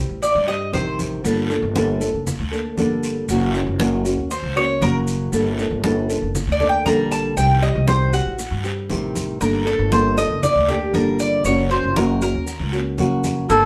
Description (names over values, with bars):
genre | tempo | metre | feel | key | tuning
latin, Cuban son and guajira | 118 BPM | 4/4 | straight | G harmonic minor | A4 = 440 Hz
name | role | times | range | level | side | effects
nylon-string guitar | accompaniment | 0.0-13.7 s | C3 to A4 | -23 LUFS | equal | none
upright bass | bass | 0.0-13.7 s | F#1 to G2 | -26 LUFS | equal | none
Cuban tres | arpeggios | 0.2-1.0, 4.3-13.7 s | Bb3 to Bb5 | -23 LUFS | equal | none
congas | percussion | 0.2-13.7 s | none | -30 LUFS | equal | none
guiro | percussion | 0.2-13.7 s | none | -37 LUFS | equal | none
maracas | percussion | 0.2-13.7 s | none | -38 LUFS | equal | none
trumpet with cup mute | melody | 13.5-13.7 s | A4 | -16 LUFS | equal | none
room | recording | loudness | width
moderate studio reverb, RT60 0.6 s | band playing live in one room, lossy compression artefacts | -20 LUFS | mono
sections
0.0-13.5 A section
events
Cuban tres solo 0.0-13.5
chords
0.0 Cm; 1.2 Gmadd9; 3.3 F#; 5.3 Gmadd9; 7.4 Cm; 9.4 Gmadd9; 11.5 F#